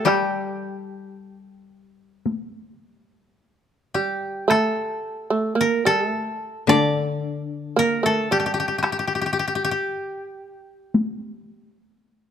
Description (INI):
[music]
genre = japanese traditional, Japanese chamber music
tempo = 53-57 BPM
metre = 4/4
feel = rubato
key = G hirajoshi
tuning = A4 = 440 Hz
[part]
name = koto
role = melody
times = 0.0-11.8 s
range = G4 to D5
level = -23 LUFS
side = left 2 dB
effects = none
[part]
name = shamisen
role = second line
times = 0.0-9.9 s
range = G3 to D4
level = -24 LUFS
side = right 4 dB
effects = none
[part]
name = koto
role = accompaniment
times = 0.0-9.9 s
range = D3 to G3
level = -25 LUFS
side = left 8 dB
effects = none
[part]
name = taiko ensemble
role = percussion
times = 0.1-11.2 s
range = none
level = -23 LUFS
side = left 2 dB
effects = none
[sound]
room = light reverb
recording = close, detailed microphones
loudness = -21 LUFS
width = side -8 dB against mid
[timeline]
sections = 0.0-4.5 A section; 4.5-12.3 B section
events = none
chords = none